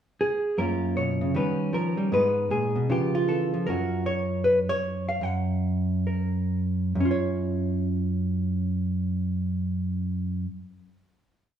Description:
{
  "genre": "solo jazz",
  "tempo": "131-156 BPM",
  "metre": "4/4",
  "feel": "swing 63% on 8ths",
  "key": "F# major",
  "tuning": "A4 = 439 Hz",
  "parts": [
    { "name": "hollow-body jazz guitar", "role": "solo", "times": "0.2-10.6 s", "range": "F#2 to F#5", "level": "-24 LUFS", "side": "equal", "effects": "none" }
  ],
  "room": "moderate stone room reverb, RT60 1.1 s",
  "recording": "band playing live in one room, studio ambience",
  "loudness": "-24 LUFS",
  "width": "side -9 dB against mid",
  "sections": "0.0-0.6 pickup bar; 0.6-6.9 A section; 6.9-10.6 final chord",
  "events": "slowing down 3.6-6.9",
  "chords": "0.0 N.C.; 0.6 F#maj7; 1.3 D#7b13; 2.1 G#m; 2.9 C#7alt; 3.6 F#maj7; 6.9 F#5"
}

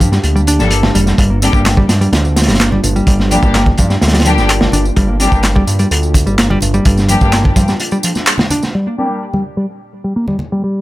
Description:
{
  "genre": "breakbeat, breaks",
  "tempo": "127 BPM",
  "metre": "4/4",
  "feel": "straight",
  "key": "G minor",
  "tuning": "A4 = 440 Hz",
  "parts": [
    { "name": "dark analog pad", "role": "sustained chords", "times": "0.0-10.8 s", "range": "Bb3 to G4", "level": "-23 LUFS", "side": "right 2 dB", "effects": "wide subtle chorus, sidechain pumping" },
    { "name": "picked electric bass", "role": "riff", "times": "0.0-10.8 s", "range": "F3 to D4", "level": "-17 LUFS", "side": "equal", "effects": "low-pass filter, dub echo" },
    { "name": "fat analog bass", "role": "bass", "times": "0.0-7.7 s", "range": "F1 to G2", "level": "-15 LUFS", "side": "equal", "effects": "none" },
    { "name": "crunchy breakbeat drum kit", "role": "drums", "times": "0.0-8.7 s", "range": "hi-hat, kick drum, snare drum", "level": "-14 LUFS", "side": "equal", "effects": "none" },
    { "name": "electronic tambourine and handclaps", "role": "drums", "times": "0.0-8.7 s", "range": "none", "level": "-19 LUFS", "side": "equal", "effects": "overdrive" },
    { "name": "muted studio string section", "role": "stabs", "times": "0.6-9.1 s", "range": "G3 to A4", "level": "-19 LUFS", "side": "left 2 dB", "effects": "low-pass filter, dub echo" },
    { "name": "congas", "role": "percussion", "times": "0.6-10.5 s", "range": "none", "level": "-24 LUFS", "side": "left 1 dB", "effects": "none" }
  ],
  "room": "light reverb",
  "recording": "none",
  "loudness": "-10 LUFS",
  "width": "side -17 dB against mid",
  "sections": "0.0-8.7 A section; 8.7-10.8 B section",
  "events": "break 7.8-8.7; band accent 8.3",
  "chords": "0.0 Gm"
}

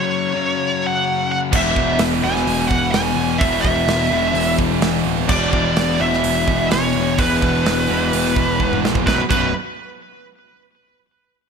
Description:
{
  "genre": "heavy metal",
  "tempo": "128 BPM",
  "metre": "4/4",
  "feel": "straight",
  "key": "unclear",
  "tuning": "A4 = 440 Hz",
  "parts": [
    { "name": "high-gain lead guitar", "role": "melody", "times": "0.0-9.5 s", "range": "B4 to G#5", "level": "-21 LUFS", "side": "right 2 dB", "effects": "distortion, digital delay" },
    { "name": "distorted electric guitar", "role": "riff", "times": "0.0-9.5 s", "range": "B1 to F#3", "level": "-23 LUFS", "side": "left 12 dB", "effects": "distortion" },
    { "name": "high-gain distorted guitar", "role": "riff", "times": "1.5-9.5 s", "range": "B1 to E3", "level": "-24 LUFS", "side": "right 13 dB", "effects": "distortion" },
    { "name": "raw garage guitar", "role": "riff", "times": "1.5-9.5 s", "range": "B1 to E3", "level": "-25 LUFS", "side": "equal", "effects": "overdrive" },
    { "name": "fuzz picked electric bass", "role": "bass", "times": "1.5-9.5 s", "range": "B0 to A#1", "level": "-24 LUFS", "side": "right 1 dB", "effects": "overdrive" },
    { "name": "modern studio drum kit", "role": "drums", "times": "1.5-9.4 s", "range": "crash cymbal, hi-hat, kick drum, snare drum, toms", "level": "-22 LUFS", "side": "right 2 dB", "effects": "gated reverb" }
  ],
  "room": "moderate lush hall reverb, RT60 1.7 s, small room ambience",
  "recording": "bright 1980s-style digital production",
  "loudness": "-15 LUFS",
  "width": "side -6 dB against mid",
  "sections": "0.0-9.1 A section; 9.1-10.9 B section",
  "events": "drum fill 8.6-9.1",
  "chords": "0.0 F#5; 1.5 E; 5.3 E5; 9.1 B5"
}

